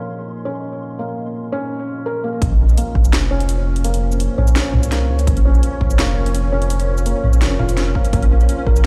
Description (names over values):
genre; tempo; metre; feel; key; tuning
half-time drum and bass; 168 BPM; 4/4; half-time; Bb minor; A4 = 440 Hz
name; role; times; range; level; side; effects
deep dark ambient pad; sustained chords; 0.0-8.9 s; Bb3 to F5; -30 LUFS; equal; chorus, built-in reverb, sidechain pumping
felt-muted upright piano; arpeggios; 0.0-8.9 s; Bb3 to Bb4; -28 LUFS; equal; tape echo
pulsing gated texture; texture; 0.0-8.9 s; Db4 to C6; -35 LUFS; equal; chorus, built-in reverb
saturated sub bass; bass; 2.4-8.8 s; F1 to Db2; -18 LUFS; equal; none
drum and bass drum kit; drums; 2.4-8.8 s; hi-hat, shaker, snare drum, toms; -26 LUFS; equal; overdrive
electronic kick drum; drums; 2.4-3.0, 5.3-8.7 s; none; -20 LUFS; equal; none
room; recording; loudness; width
digital ambience; played on a big sound system in a bare room, large studio reverb; -17 LUFS; mono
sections
0.0-2.4 A section; 2.4-8.9 B section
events
drop 2.4-8.9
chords
0.0 Bbmadd9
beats
0.27 0.63 | 0.99 1.34 1.70 2.06 | 2.42 2.77 3.13 3.49 | 3.85 4.20 4.56 4.92 | 5.27 5.63 5.99 6.34 | 6.70 7.06 7.42 7.77 | 8.13 8.49 8.85